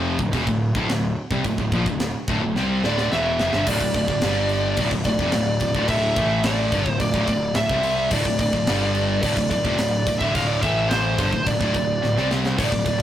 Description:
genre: heavy metal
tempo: 108 BPM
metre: 4/4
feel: straight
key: D minor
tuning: A4 = 440 Hz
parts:
  - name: heavy high-gain guitar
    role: riff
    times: 0.0-13.0 s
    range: D2 to C4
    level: -28 LUFS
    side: right 6 dB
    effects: distortion
  - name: high-gain distorted guitar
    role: riff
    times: 0.0-13.0 s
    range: D2 to C4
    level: -27 LUFS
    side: left 6 dB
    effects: distortion
  - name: sludgy distorted guitar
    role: riff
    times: 0.0-13.0 s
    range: D2 to C4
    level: -30 LUFS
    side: left 1 dB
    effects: none
  - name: fuzz picked electric bass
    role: bass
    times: 0.0-13.0 s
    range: D1 to C2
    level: -26 LUFS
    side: equal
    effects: overdrive
  - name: tight metal drum kit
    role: drums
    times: 0.2-13.0 s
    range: crash cymbal, kick drum, snare drum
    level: -27 LUFS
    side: equal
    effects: none
  - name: high-gain lead guitar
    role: melody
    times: 2.9-13.0 s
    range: C5 to F5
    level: -23 LUFS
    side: right 1 dB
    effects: distortion
room: moderate studio ambience, RT60 0.5 s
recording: rough rehearsal-room recording, tube saturation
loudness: -19 LUFS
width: side -11 dB against mid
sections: 0.0-3.7 A section; 3.7-13.0 B section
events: drum fill 2.6-3.7, 12.0-12.6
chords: 0.0 Dm; 3.7 D5; 4.2 G5; 4.8 Dm; 6.2 A5; 6.7 D5; 8.7 G5; 9.2 Dm; 10.6 A5; 11.2 D5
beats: 0.33 0.89 | 1.44 2.00 2.56 3.11 | 3.67 4.22 4.78 5.34 | 5.89 6.45 7.00 7.56 | 8.12 8.67 9.23 9.79 | 10.35 10.90 11.46 12.02 | 12.58

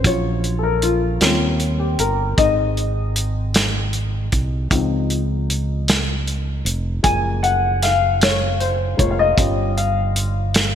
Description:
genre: slow gospel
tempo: 52 BPM (dotted quarters)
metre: 6/8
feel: straight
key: Db major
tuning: A4 = 436 Hz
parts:
  - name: dark grand piano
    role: accompaniment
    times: 0.0-10.8 s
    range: F3 to Ab5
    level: -20 LUFS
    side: left 4 dB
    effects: lush chorus
  - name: fingered electric bass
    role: bass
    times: 0.0-10.8 s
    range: F1 to Eb2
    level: -21 LUFS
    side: right 1 dB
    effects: none
  - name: warm soul drum kit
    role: drums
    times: 0.0-10.7 s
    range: hi-hat, kick drum, snare drum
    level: -20 LUFS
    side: right 1 dB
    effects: gated reverb
room: light reverb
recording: bright 1980s-style digital production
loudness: -17 LUFS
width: side -9 dB against mid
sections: 0.0-10.8 A section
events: grand piano solo 0.0-10.8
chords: 0.1 Gbmaj7/Bb; 1.2 Eb13; 2.4 Ab; 4.7 Dbmaj7; 7.0 Gbmaj7; 9.4 Eb9/G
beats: | 0.05 1.22 | 2.38 3.55 | 4.72 5.88 | 7.05 8.21 | 9.38 10.54

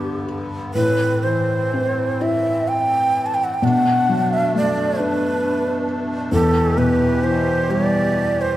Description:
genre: celtic folk, Celtic slow air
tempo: 40-46 BPM (dotted quarters)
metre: 6/8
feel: rubato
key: A dorian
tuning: A4 = 440 Hz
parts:
  - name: breathy mellow shakuhachi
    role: melody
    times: 0.0-8.6 s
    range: G4 to A5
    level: -20 LUFS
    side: right 2 dB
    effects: none
  - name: felt-muted upright piano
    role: accompaniment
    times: 0.0-8.6 s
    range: E2 to E4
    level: -20 LUFS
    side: left 1 dB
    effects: none
  - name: musette accordion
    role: sustained chords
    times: 0.0-8.6 s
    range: G2 to G4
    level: -27 LUFS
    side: left 1 dB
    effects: none
room: wet recital hall reverb, RT60 1.6 s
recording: none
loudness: -17 LUFS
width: side -14 dB against mid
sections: 0.0-8.6 A section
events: none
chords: 0.0 G; 0.8 Am; 3.6 Bm7; 6.3 Em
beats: | 0.76 2.21 | 3.62 5.00 | 6.33 7.70

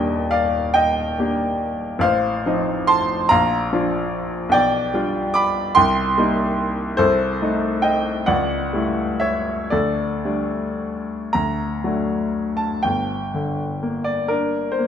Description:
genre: classical, romantic nocturne for solo piano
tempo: 36-49 BPM (dotted quarters)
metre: 6/8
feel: rubato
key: G minor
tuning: A4 = 440 Hz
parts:
  - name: clear baby grand piano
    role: solo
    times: 0.0-14.9 s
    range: Eb1 to D6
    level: -18 LUFS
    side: equal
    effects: none
room: wet recital hall reverb, RT60 1.8 s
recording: dark, warm production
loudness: -18 LUFS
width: side -8 dB against mid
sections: 0.0-12.8 A section; 12.8-14.9 B section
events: none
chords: 0.0 Ebmaj7; 2.0 F7/A; 3.3 Bb; 4.5 G7/B; 5.8 Cm7; 7.0 Adim/C; 8.3 A7/C#; 9.7 Dsus4; 11.3 D; 12.8 Gm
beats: 0.75 | 2.03 3.30 | 4.54 5.78 | 7.01 8.30 | 9.73 11.35 | 12.84 14.31

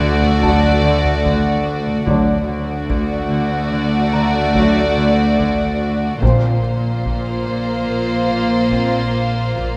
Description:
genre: cinematic, suspense film score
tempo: 72 BPM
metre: 5/4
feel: straight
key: unclear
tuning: A4 = 440 Hz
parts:
  - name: rich studio violin section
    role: melody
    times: 0.0-9.8 s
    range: C5 to D5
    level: -25 LUFS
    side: equal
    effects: none
  - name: warm studio violin section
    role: second line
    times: 0.0-9.8 s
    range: F4 to F#4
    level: -26 LUFS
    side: equal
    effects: none
  - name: warm symphonic viola section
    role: accompaniment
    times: 0.0-9.8 s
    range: A3 to Bb3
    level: -24 LUFS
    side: equal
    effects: none
  - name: concert harp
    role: riff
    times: 0.0-9.8 s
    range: Bb2 to D4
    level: -28 LUFS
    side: equal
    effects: none
  - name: dark studio double bass section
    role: bass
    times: 0.0-9.8 s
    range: Bb1 to D2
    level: -24 LUFS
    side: equal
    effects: none
  - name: warm studio cello section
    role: bass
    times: 0.0-9.8 s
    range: D2 to Bb2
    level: -25 LUFS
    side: equal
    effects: none
  - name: felt-muted upright piano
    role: texture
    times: 0.0-9.8 s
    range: A5 to Bb5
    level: -32 LUFS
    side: equal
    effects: none
  - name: taiko ensemble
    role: drums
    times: 0.2-9.8 s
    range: none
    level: -27 LUFS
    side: equal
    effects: none
  - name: mellow French horn section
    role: sustained chords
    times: 0.4-9.0 s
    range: F3 to D4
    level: -26 LUFS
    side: equal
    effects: none
room: moderate scoring stage reverb, RT60 2.0 s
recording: none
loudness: -17 LUFS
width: mono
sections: 0.0-9.8 A section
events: none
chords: 0.0 D; 6.2 Bbsus2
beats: 0.42 1.24 | 2.07 2.89 3.72 4.55 5.38 | 6.22 7.05 7.88 8.71 9.56

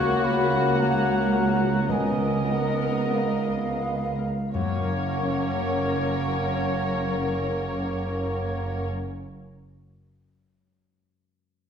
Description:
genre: classical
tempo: 41-56 BPM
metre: 4/4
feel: rubato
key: F# major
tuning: A4 = 440 Hz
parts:
  - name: muted symphonic violin section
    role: melody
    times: 0.0-8.9 s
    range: C#5 to F#5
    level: -34 LUFS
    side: left 3 dB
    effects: none
  - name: clear clarinet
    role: second line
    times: 0.0-8.9 s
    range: A#4 to C#5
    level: -35 LUFS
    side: left 1 dB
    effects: none
  - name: mellow hollow concert flute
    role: second line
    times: 0.0-8.9 s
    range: E#5 to C#6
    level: -33 LUFS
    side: left 2 dB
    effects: none
  - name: muted symphonic violin section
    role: second line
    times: 0.0-8.9 s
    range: F#4 to A#4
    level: -36 LUFS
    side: left 3 dB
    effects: none
  - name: warm cor anglais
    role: second line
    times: 0.0-8.9 s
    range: C#5 to F#5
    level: -34 LUFS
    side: right 1 dB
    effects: none
  - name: muted symphonic viola section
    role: accompaniment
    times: 0.0-8.9 s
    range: A#3 to C#4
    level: -33 LUFS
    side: equal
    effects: none
  - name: warm bassoon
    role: accompaniment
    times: 0.0-8.9 s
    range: A#3 to B3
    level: -35 LUFS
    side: right 2 dB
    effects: none
  - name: mellow French horn section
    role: sustained chords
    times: 0.0-8.9 s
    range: A#3 to A#4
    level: -31 LUFS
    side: left 4 dB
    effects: none
  - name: concert harp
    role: arpeggios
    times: 0.0-9.2 s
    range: F#2 to F#5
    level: -35 LUFS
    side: left 5 dB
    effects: none
  - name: muted symphonic cello section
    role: bass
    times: 0.0-8.9 s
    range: C#2 to F#2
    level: -30 LUFS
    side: right 3 dB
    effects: none
  - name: muted symphonic double bass section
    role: bass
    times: 0.0-8.9 s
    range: F#1 to C#2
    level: -30 LUFS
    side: right 4 dB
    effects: none
  - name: timpani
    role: percussion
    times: 1.9-8.9 s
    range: F#2 to C#3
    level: -35 LUFS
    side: left 2 dB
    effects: none
room: wet recital hall reverb, RT60 1.5 s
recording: heard from further back in the room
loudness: -22 LUFS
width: side -7 dB against mid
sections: 0.0-4.5 A section; 4.5-9.9 B section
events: slowing down 0.0-4.5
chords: 0.0 F#/C#; 1.9 C#13; 4.5 F#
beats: 0.77 1.90 3.13 | 4.54 5.93 7.26 8.61

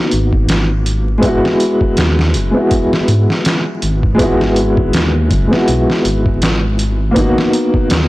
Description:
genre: trip hop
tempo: 81 BPM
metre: 4/4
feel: swing 56% on 16ths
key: unclear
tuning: A4 = 440 Hz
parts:
  - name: dark upright piano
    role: accompaniment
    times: 0.0-8.1 s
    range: G#3 to F#4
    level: -15 LUFS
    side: equal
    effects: tremolo, vintage 12-bit sampler grit, tape echo
  - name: dark detuned saw bass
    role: bass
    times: 0.1-8.1 s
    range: F#1 to G#2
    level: -16 LUFS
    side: equal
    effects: none
  - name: trip hop sampler-style drum kit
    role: drums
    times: 0.1-8.1 s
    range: hi-hat, kick drum, snare drum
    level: -17 LUFS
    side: equal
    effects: none
room: light reverb, digital ambience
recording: blown-out, overdriven recording, vinyl crackle, overdrive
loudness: -11 LUFS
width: side -18 dB against mid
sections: 0.0-8.1 A section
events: none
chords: 0.0 G#m7; 1.2 Eadd9; 7.2 G#m7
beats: 0.49 | 1.24 1.98 2.72 3.46 | 4.20 4.94 5.68 6.42 | 7.16 7.90

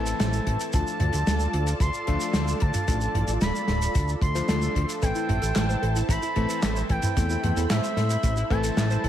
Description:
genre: synthwave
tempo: 112 BPM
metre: 4/4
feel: straight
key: A minor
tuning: A4 = 439 Hz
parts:
  - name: expressive portamento lead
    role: melody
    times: 0.0-9.1 s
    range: E5 to C6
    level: -30 LUFS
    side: right 1 dB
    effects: chorus, digital delay, shimmer reverb
  - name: warm analog pad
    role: sustained chords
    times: 0.0-9.1 s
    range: E4 to B5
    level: -33 LUFS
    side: right 4 dB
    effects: chorus, sidechain pumping, shimmer reverb
  - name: warm electric grand piano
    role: stabs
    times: 0.0-9.1 s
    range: E3 to C5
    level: -32 LUFS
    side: left 6 dB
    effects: shimmer reverb
  - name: fat analog bass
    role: bass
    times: 0.0-9.1 s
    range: D1 to A2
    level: -26 LUFS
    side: equal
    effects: tube saturation
  - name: warm soul drum kit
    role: drums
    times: 0.1-9.1 s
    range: handclaps, hi-hat, shaker, snare drum, toms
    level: -28 LUFS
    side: equal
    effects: studio reverb, gated reverb
  - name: kick drum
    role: drums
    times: 0.5-9.1 s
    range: none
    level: -26 LUFS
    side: equal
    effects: studio reverb
  - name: analog pluck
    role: arpeggios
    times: 5.0-9.1 s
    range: A3 to C5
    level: -34 LUFS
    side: right 2 dB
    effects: chorus, tape echo, shimmer reverb
room: light reverb, small room ambience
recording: none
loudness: -22 LUFS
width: side -11 dB against mid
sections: 0.0-9.1 A section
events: none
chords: 0.0 Am; 0.7 Dm; 5.0 Am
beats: 0.20 | 0.73 1.27 1.81 2.34 | 2.88 3.41 3.95 4.49 | 5.02 5.56 6.09 6.63 | 7.16 7.70 8.23 8.77

